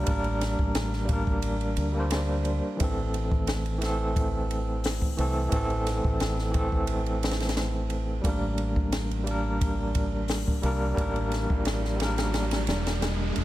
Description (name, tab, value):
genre	trip hop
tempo	88 BPM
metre	4/4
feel	straight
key	unclear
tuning	A4 = 435 Hz
part	overdriven tine electric piano	accompaniment	0.0-13.4 s	E3 to C5	-30 LUFS	equal	tremolo, vintage 12-bit sampler grit, tape echo
part	deep dub fingered electric bass	bass	0.0-13.4 s	E1 to D2	-29 LUFS	equal	none
part	open jazz drum kit	drums	0.1-13.4 s	hi-hat, kick drum, ride cymbal, snare drum	-30 LUFS	equal	none
part	riser	sound effects	10.1-13.4 s	none	-38 LUFS	right 1 dB	none
room	small room ambience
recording	none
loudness	-25 LUFS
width	side -15 dB against mid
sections	0.0-13.4 A section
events	riser 10.1-13.4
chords	0.0 Gm/A; 2.8 Am; 8.2 Gm/A